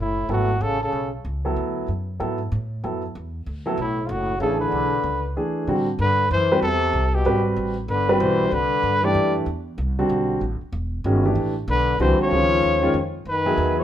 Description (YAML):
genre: modal jazz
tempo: 190 BPM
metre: 3/4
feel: swing 62% on 8ths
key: B dorian, A dorian from 5.7 s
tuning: A4 = 439 Hz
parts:
  - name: warm trumpet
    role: melody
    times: 0.0-1.1, 3.8-9.4, 11.7-13.8 s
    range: E4 to D5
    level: -23 LUFS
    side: equal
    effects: none
  - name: trombone with plunger mute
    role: second line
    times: 0.0-1.1, 3.8-9.3, 11.7-13.8 s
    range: G#2 to G3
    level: -26 LUFS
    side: left 5 dB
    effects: none
  - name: upright bass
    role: bass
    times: 0.0-13.8 s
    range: E1 to A2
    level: -26 LUFS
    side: equal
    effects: none
  - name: warm concert grand piano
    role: accompaniment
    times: 0.3-13.8 s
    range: D3 to E5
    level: -22 LUFS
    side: right 1 dB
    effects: none
room: moderate large studio reverb, RT60 1.0 s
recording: band playing live in one room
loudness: -20 LUFS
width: side -10 dB against mid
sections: 0.0-5.7 A section; 5.7-13.3 B section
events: none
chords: 0.0 Bm11; 5.7 Am11; 12.3 C#add9; 13.3 F#13sus4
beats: 0.30 0.62 | 0.93 1.25 1.57 | 1.88 2.20 2.52 | 2.83 3.15 3.46 | 3.78 4.10 4.41 | 4.73 5.04 5.36 | 5.68 5.99 6.31 | 6.62 6.94 7.26 | 7.57 7.89 8.21 | 8.52 8.84 9.15 | 9.47 9.79 10.10 | 10.42 10.73 11.05 | 11.37 11.68 12.00 | 12.31 12.63 12.95 | 13.26 13.58